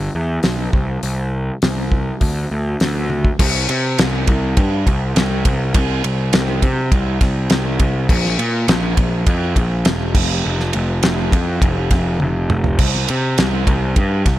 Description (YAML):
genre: classic rock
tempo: 102 BPM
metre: 4/4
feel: straight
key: unclear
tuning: A4 = 440 Hz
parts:
  - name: fuzz picked electric bass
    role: bass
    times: 0.0-14.4 s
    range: E1 to C3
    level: -18 LUFS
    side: equal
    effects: overdrive
  - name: damped 70s drum kit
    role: drums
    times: 0.4-14.4 s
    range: crash cymbal, hi-hat, kick drum, ride cymbal, snare drum, toms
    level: -17 LUFS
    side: equal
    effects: none
room: light reverb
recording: none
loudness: -15 LUFS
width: side -14 dB against mid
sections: 0.0-3.4 A section; 3.4-14.4 B section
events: drum fill 3.1, 12.2-12.8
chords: none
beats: 0.44 | 1.03 1.62 2.22 2.81 | 3.40 3.98 4.57 5.16 | 5.75 6.34 6.92 7.51 | 8.10 8.68 9.27 9.86 | 10.45 11.03 11.62 12.21 | 12.79 13.38 13.97